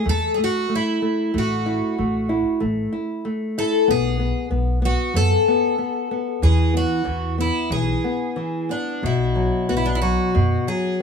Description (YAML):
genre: fado-style ballad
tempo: 93 BPM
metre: 4/4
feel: rubato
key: unclear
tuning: A4 = 437 Hz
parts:
  - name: picked twelve-string acoustic guitar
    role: melody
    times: 0.0-11.0 s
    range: D4 to A4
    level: -23 LUFS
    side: left 1 dB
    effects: none
  - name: nylon-string guitar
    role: accompaniment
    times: 0.0-11.0 s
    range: B2 to E4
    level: -23 LUFS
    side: left 2 dB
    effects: none
  - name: upright bass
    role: bass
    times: 0.1-10.6 s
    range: A1 to F#2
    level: -22 LUFS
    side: equal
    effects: none
room: light reverb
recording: none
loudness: -19 LUFS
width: side -6 dB against mid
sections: 0.0-11.0 A section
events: none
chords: 0.0 A5; 3.9 B5; 6.4 E; 9.0 B5